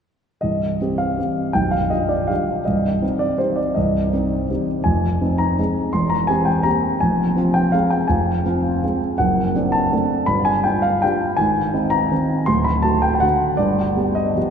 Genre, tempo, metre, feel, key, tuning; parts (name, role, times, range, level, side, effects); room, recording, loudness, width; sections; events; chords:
classical, piano waltz; 164 BPM; 3/4; uneven beats, rubato; C minor; A4 = 442 Hz
warm grand piano; solo; 0.4-14.5 s; B0 to C6; -17 LUFS; equal
wet cathedral reverb, RT60 6.5 s; in a vast, echoing space; -17 LUFS; side -7 dB against mid
0.4-14.5 A section
0.4 Cm; 1.6 G7/B; 2.7 Cm; 4.9 Fm7; 5.9 C7/E; 7.0 Fm; 9.2 D7/F#; 10.3 G5; 11.4 Ab; 12.5 D; 13.6 G7